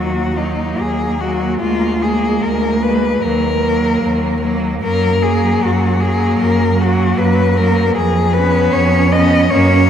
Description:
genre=classical, lyrical piece for cello ensemble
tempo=71-78 BPM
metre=4/4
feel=rubato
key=Eb minor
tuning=A4 = 440 Hz
part: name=warm cello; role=melody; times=0.0-9.9 s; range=Eb4 to Eb5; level=-17 LUFS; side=left 4 dB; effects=none
part: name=rich cello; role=second line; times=0.0-9.9 s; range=Bb3 to Db4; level=-19 LUFS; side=right 2 dB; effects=none
part: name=rich cello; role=accompaniment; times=0.0-9.9 s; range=Gb3 to Cb4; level=-22 LUFS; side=left 1 dB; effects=none
part: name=rich cello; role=bass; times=0.0-9.9 s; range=D2 to Gb2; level=-18 LUFS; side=right 2 dB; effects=none
room=wet cathedral reverb, RT60 6.5 s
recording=in a vast, echoing space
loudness=-13 LUFS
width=side -9 dB against mid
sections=0.0-9.9 A section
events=none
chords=0.0 Ebm; 1.6 Bb7/D; 3.2 Ebm; 4.8 Gb; 8.0 Db7/F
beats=0.79 | 1.62 2.43 3.22 4.02 | 4.83 5.62 6.40 7.19 | 7.97 8.74 9.53

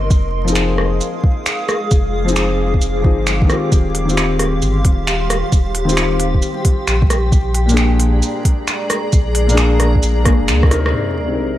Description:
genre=future garage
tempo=133 BPM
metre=4/4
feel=swing 66% on 16ths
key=unclear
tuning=A4 = 442 Hz
part: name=felt-muted upright piano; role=accompaniment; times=0.0-11.6 s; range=Bb2 to Bb4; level=-20 LUFS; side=left 2 dB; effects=vintage 12-bit sampler grit, sidechain pumping, tape echo
part: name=granular cloud pad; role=sustained chords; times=0.0-11.6 s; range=C4 to Eb6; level=-22 LUFS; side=equal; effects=built-in reverb, sidechain pumping
part: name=warm sub bass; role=bass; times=0.0-10.9 s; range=Eb1 to D2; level=-18 LUFS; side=equal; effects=sidechain pumping
part: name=electronic kick drum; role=drums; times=0.1-10.7 s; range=none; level=-14 LUFS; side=equal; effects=none
part: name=organic electronic drum kit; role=drums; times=0.1-10.9 s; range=finger snaps, hi-hat, rim click, shaker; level=-21 LUFS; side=right 1 dB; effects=none
part: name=sub drop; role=sound effects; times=10.9-11.6 s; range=none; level=-24 LUFS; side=equal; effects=none
room=light reverb, digital ambience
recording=vinyl crackle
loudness=-13 LUFS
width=side -13 dB against mid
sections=0.0-10.9 A section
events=drum fill 10.6-10.9; band accent 10.8; impact 10.9-11.6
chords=0.1 Fm7; 3.7 Eb69; 7.3 Bb7; 10.9 Cm7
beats=| 0.11 0.56 1.01 1.46 | 1.91 2.36 2.81 3.27 | 3.72 4.17 4.62 5.07 | 5.52 5.97 6.42 6.88 | 7.33 7.78 8.23 8.68 | 9.13 9.58 10.03 10.48 | 10.94 11.39

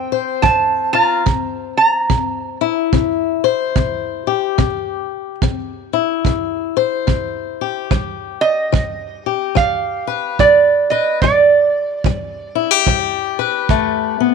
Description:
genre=acoustic country blues, solo or duo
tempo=72 BPM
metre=4/4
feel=swing 61% on 8ths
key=C major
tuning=A4 = 438 Hz
part: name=lap resonator guitar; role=melody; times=0.0-2.6, 8.4-14.3 s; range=D5 to Bb5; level=-14 LUFS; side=right 5 dB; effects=none
part: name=fingerpicked swing-style acoustic guitar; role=accompaniment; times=0.0-14.3 s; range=C3 to C5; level=-18 LUFS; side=left 13 dB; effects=none
part: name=kick drum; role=drums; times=0.4-13.9 s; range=none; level=-19 LUFS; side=right 4 dB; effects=none
room=light reverb, small room ambience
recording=1960s-style stereo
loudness=-14 LUFS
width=side -5 dB against mid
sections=0.0-14.3 A section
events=none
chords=0.0 F; 1.3 C; 7.9 G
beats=0.43 | 1.26 2.09 2.92 3.75 | 4.58 5.41 6.24 7.07 | 7.90 8.73 9.56 10.39 | 11.21 12.04 12.87 13.69

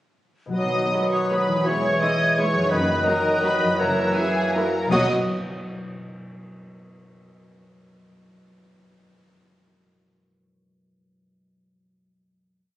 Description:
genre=classical, orchestral ballroom waltz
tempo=153-183 BPM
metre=3/4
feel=rubato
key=B major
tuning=A4 = 440 Hz
part: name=concert harp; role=arpeggios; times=0.5-5.1 s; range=E2 to F#5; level=-29 LUFS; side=left 2 dB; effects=none
part: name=warm studio violin section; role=melody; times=0.6-5.1 s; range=G#5 to D#6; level=-30 LUFS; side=left 1 dB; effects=none
part: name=clear clarinet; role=second line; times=0.6-5.1 s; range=B4 to D#5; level=-33 LUFS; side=right 1 dB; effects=none
part: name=mellow hollow small flute group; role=second line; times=0.6-5.1 s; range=D#6 to G#6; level=-27 LUFS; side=left 2 dB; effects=none
part: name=warm studio violin section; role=second line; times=0.6-5.1 s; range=G#4 to D#5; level=-28 LUFS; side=equal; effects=none
part: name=clear bassoon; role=accompaniment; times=0.6-5.1 s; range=D#3 to F#3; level=-26 LUFS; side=right 1 dB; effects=none
part: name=warm French horn section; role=sustained chords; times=0.6-5.1 s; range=D#3 to G#4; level=-30 LUFS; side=equal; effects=none
part: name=clear trumpet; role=stabs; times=0.6-5.1 s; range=B4 to E5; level=-31 LUFS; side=right 1 dB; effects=none
part: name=rich studio double bass section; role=bass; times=0.6-5.1 s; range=E1 to B1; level=-34 LUFS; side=right 1 dB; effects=none
part: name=warm studio cello section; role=bass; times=0.6-5.1 s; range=E2 to B2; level=-31 LUFS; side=equal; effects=none
part: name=warm studio viola section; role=accompaniment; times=0.9-5.1 s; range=F#3 to F#4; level=-32 LUFS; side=right 1 dB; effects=none
part: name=cymbal swell, clash cymbals and concert bass drum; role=percussion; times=2.7-5.6 s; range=none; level=-38 LUFS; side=equal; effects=none
part: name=timpani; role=percussion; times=2.7-5.1 s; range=F#2 to B2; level=-38 LUFS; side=equal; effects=none
room=wet scoring stage reverb, RT60 1.8 s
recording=recorded on a phone in the room, club reverb, compression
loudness=-19 LUFS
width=side -14 dB against mid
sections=0.6-4.9 A section; 4.9-6.0 final chord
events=band accent 4.9-5.3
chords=0.6 B; 1.7 C#m/E; 2.7 B/F#; 3.8 F#7; 4.9 B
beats=| 0.57 0.93 1.31 | 1.66 2.01 2.37 | 2.72 3.07 3.44 | 3.79 4.16 4.55 | 4.92 5.29

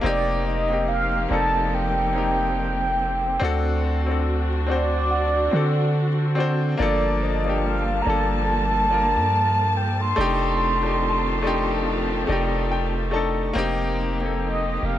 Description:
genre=contemporary R&B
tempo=71 BPM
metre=4/4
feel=swing 58% on 16ths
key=unclear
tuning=A4 = 440 Hz
part: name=clear concert grand piano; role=accompaniment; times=0.0-15.0 s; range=F3 to A5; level=-25 LUFS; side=left 3 dB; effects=none
part: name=dark studio string section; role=sustained chords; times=0.0-15.0 s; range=D3 to A5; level=-29 LUFS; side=right 1 dB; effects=none
part: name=long sustained 808-style bass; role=bass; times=0.0-15.0 s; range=F1 to D3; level=-25 LUFS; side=right 1 dB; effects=none
part: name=mellow horn-like synth lead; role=melody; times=0.1-15.0 s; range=D5 to C6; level=-24 LUFS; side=right 1 dB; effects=chorus, ping-pong delay
part: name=celesta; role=texture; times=0.9-9.7 s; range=C5 to F#5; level=-36 LUFS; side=right 3 dB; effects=none
room=light reverb, small room reverb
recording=none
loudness=-20 LUFS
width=side -12 dB against mid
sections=0.0-13.6 A section; 13.6-15.0 B section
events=grand piano fill 11.9-13.6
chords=0.0 F7sus4; 3.4 D7; 6.8 Gm7; 10.2 F13; 13.6 F7sus4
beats=| 0.04 0.88 1.73 2.57 | 3.42 4.26 5.11 5.95 | 6.80 7.64 8.49 9.33 | 10.18 11.02 11.87 12.71 | 13.56 14.40

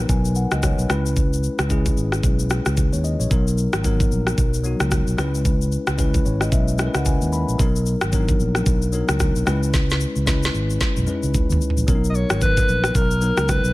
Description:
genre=afrobeats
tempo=112 BPM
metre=4/4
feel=swing 58% on 16ths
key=B major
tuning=A4 = 440 Hz
part: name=bell-like tine electric piano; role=accompaniment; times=0.0-13.7 s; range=F#3 to B5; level=-25 LUFS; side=left 2 dB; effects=none
part: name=fingered electric bass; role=bass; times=0.0-13.7 s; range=G#1 to D#2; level=-22 LUFS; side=equal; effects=none
part: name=afro-pop drum kit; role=drums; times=0.1-13.7 s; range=kick drum, rim click, shaker, snare drum, toms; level=-21 LUFS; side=equal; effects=overdrive
part: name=breathy alto saxophone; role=melody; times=12.1-13.7 s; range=A#4 to D#5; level=-22 LUFS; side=equal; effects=none
room=digital ambience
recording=none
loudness=-18 LUFS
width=side -19 dB against mid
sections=0.0-11.9 A section; 11.9-13.7 B section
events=tine electric piano fill 6.0-7.6; drum fill 9.7-11.9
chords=0.0 Bmaj7; 0.9 C#m7; 3.3 Bmaj7; 5.2 C#m7; 7.6 Bmaj7; 9.5 C#m7; 11.9 Bmaj7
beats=0.09 0.63 | 1.17 1.70 2.24 2.77 | 3.31 3.84 4.38 4.92 | 5.45 5.99 6.52 7.06 | 7.59 8.13 8.66 9.20 | 9.74 10.27 10.81 11.34 | 11.88 12.41 12.95 13.49

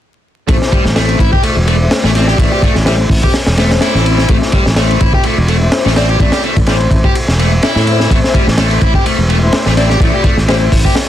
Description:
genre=breakbeat, breaks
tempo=126 BPM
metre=4/4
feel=swing 55% on 16ths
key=A minor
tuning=A4 = 439 Hz
part: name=fuzz guitar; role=riff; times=0.5-10.9 s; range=G3 to G4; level=-17 LUFS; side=left 1 dB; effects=distortion, tube saturation, ping-pong delay
part: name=dark studio string section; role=stabs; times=0.5-10.6 s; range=A3 to D5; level=-18 LUFS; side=left 3 dB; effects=low-pass filter, ping-pong delay
part: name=modern bright fingered electric bass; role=bass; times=0.5-10.8 s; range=E1 to A2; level=-14 LUFS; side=equal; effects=none
part: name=crunchy breakbeat drum kit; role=drums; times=0.5-11.1 s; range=hi-hat, kick drum, ride cymbal, snare drum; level=-13 LUFS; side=equal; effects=none
room=small room ambience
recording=dense, heavily limited modern master, vinyl crackle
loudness=-9 LUFS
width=side -12 dB against mid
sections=0.5-11.1 A section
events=filter sweep on string section 0.5-11.1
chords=0.5 Am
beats=| 0.48 0.96 1.44 1.91 | 2.39 2.86 3.34 3.82 | 4.29 4.77 5.25 5.72 | 6.20 6.67 7.15 7.63 | 8.10 8.58 9.05 9.53 | 10.01 10.48 10.96

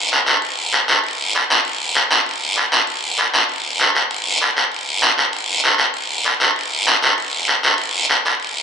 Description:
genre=latin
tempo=196 BPM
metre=4/4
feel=straight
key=none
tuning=none
part: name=guiro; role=percussion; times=0.1-8.6 s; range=none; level=-15 LUFS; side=equal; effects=none
room=wet large studio reverb, RT60 1.3 s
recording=dark, warm production, nothing above 10.8 kHz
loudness=-15 LUFS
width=side -6 dB against mid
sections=0.0-1.6 A section; 1.6-8.6 A section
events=none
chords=none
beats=0.12 | 0.42 0.73 1.04 1.34 | 1.65 1.96 2.26 2.57 | 2.88 3.18 3.49 3.80 | 4.10 4.41 4.72 5.02 | 5.33 5.63 5.94 6.25 | 6.55 6.86 7.17 7.47 | 7.78 8.09 8.39

